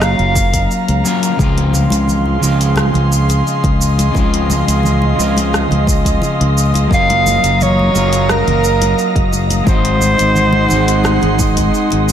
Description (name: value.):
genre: sunset chillout.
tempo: 87 BPM.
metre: 4/4.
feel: straight.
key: Db major.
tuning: A4 = 440 Hz.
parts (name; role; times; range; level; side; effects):
mellow soprano saxophone; melody; 0.0-0.7, 6.9-11.7 s; Bb4 to F5; -17 LUFS; right 1 dB; vintage 12-bit sampler grit, tape echo.
electric guitar at the edge of break-up; accompaniment; 0.0-12.1 s; Db3 to C5; -18 LUFS; moving between left 5 dB and right 5 dB; auto-pan, ping-pong delay.
airy breathy pad; sustained chords; 0.0-12.1 s; Gb3 to C6; -20 LUFS; equal; chorus.
overdriven fingered electric bass; bass; 0.0-12.1 s; Gb1 to Db2; -16 LUFS; equal; none.
deep house drum kit; drums; 0.0-12.1 s; cabasa, hi-hat, rim click; -22 LUFS; equal; none.
electronic kick drum; drums; 0.4-11.7 s; none; -16 LUFS; equal; none.
wind-like tuned noise texture; texture; 2.4-12.1 s; Eb5 to Eb6; -24 LUFS; right 1 dB; built-in reverb.
congas; percussion; 1.6-12.0 s; none; -24 LUFS; right 1 dB; none.
room: light reverb.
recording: none.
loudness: -11 LUFS.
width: side -9 dB against mid.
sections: 0.0-12.1 A section.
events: none.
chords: 0.0 Gbmaj7; 1.4 Dbmaj7; 6.9 Gbmaj7; 9.7 Ab7.